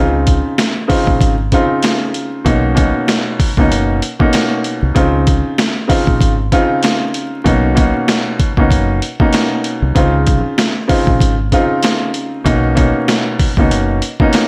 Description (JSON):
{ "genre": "hip hop, boom-bap hip-hop", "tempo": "96 BPM", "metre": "4/4", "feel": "swing 57% on 16ths", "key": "Db major", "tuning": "A4 = 440 Hz", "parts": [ { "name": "warm upright piano", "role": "accompaniment", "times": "0.0-14.5 s", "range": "Cb3 to F4", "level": "-18 LUFS", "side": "equal", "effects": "cassette tape, high-pass filter, low-pass filter" }, { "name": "deep dub fingered electric bass", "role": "bass", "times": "0.0-14.0 s", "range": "Gb1 to Db2", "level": "-19 LUFS", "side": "equal", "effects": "none" }, { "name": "boom bap sampler-style drum kit", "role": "drums", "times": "0.3-14.5 s", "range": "hi-hat, kick drum, snare drum", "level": "-17 LUFS", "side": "equal", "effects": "vintage 12-bit sampler grit" } ], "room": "light reverb", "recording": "vinyl crackle", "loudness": "-14 LUFS", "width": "mono", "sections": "0.0-14.5 A section", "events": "none", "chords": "0.0 Dbmaj9; 2.5 Cbmaj9; 5.0 Dbmaj9; 7.5 Cbmaj9; 10.0 Dbmaj9; 12.5 Cbmaj9", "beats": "0.58 1.21 1.83 | 2.46 3.08 3.71 4.33 | 4.96 5.58 6.21 6.83 | 7.46 8.08 8.71 9.33 | 9.96 10.58 11.21 11.83 | 12.46 13.08 13.71 14.33" }